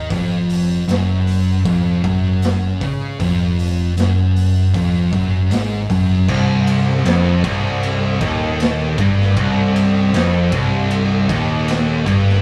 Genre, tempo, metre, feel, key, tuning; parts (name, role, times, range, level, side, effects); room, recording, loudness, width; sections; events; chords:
stoner and doom metal; 78 BPM; 4/4; straight; C minor; A4 = 440 Hz
thick fuzz guitar; riff; 0.0-12.4 s; C2 to Db3; -22 LUFS; equal; distortion
thick fuzz guitar; riff; 0.0-12.4 s; C2 to Db3; -21 LUFS; equal; distortion
overdriven picked electric bass; bass; 0.0-12.4 s; C1 to Db2; -24 LUFS; equal
raw garage drum kit; drums; 0.1-12.4 s; crash cymbal, hi-hat, kick drum, ride cymbal, snare drum; -26 LUFS; equal
tight distorted guitar; riff; 6.3-12.4 s; C2 to G2; -23 LUFS; equal; distortion
moderate booth ambience, RT60 0.2 s; rough rehearsal-room recording; -17 LUFS; mono
0.0-6.3 A section; 6.3-12.4 B section
0.1 Dbadd11/F; 6.3 Cm